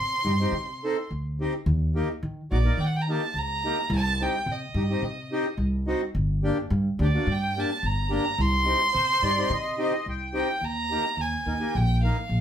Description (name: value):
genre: klezmer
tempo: 107 BPM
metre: 4/4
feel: straight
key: C dorian sharp4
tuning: A4 = 440 Hz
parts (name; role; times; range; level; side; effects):
- rich violin; melody; 0.0-12.4 s; D5 to C6; -27 LUFS; right 2 dB; none
- upright bass; bass; 0.0-12.4 s; G1 to Eb3; -26 LUFS; equal; none
- accordion; accompaniment; 0.2-12.2 s; Bb3 to Bb4; -29 LUFS; left 1 dB; none
- accordion; second line; 8.9-10.6 s; C5 to G5; -31 LUFS; left 1 dB; light tremolo tuning
room: wet studio ambience, RT60 0.4 s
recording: band playing live in one room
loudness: -23 LUFS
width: side -9 dB against mid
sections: 0.0-1.7 A section; 1.7-10.6 A section; 10.6-12.4 B section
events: none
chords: 0.0 Cm; 1.7 Eb; 3.9 Cm; 6.2 Gm; 8.4 Cm; 10.6 Eb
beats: 0.53 1.10 | 1.66 2.23 2.79 3.35 | 3.92 4.48 5.04 5.60 | 6.16 6.72 7.28 7.84 | 8.39 8.95 9.51 10.07 | 10.63 11.18 11.74 12.30